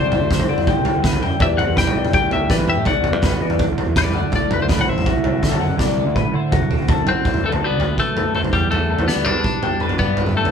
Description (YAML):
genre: math rock and midwest emo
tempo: 164 BPM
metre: 4/4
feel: straight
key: unclear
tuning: A4 = 441 Hz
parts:
  - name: twelve-string electric guitar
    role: melody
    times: 0.0-10.5 s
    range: G3 to G5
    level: -22 LUFS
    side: left 4 dB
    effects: none
  - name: twelve-string electric guitar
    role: accompaniment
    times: 0.0-10.5 s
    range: E2 to B4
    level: -25 LUFS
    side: right 7 dB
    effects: none
  - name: twelve-string electric guitar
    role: arpeggios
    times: 0.0-10.5 s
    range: F#4 to G5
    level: -24 LUFS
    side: left 8 dB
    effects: none
  - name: fuzz fingered electric bass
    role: bass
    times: 0.0-10.5 s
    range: A1 to E3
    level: -23 LUFS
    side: equal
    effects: overdrive
  - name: loose indie drum kit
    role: drums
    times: 0.1-10.5 s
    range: kick drum, snare drum, toms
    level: -20 LUFS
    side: right 1 dB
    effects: none
room: moderate large studio reverb, RT60 1.2 s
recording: band playing live in one room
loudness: -16 LUFS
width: side -7 dB against mid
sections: 0.0-7.3 A section; 7.3-10.5 B section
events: drum fill 5.8-7.3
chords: 0.0 D9sus4; 1.4 Em9; 4.1 D9; 7.3 D13; 8.5 Em11; 10.0 G6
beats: 0.31 0.67 1.04 | 1.41 1.77 2.14 2.50 | 2.87 3.23 3.60 3.96 | 4.33 4.70 5.06 5.42 | 5.79 6.16 6.52 6.89 | 7.25 7.62 7.98 8.35 | 8.71 9.08 9.45 9.81 | 10.18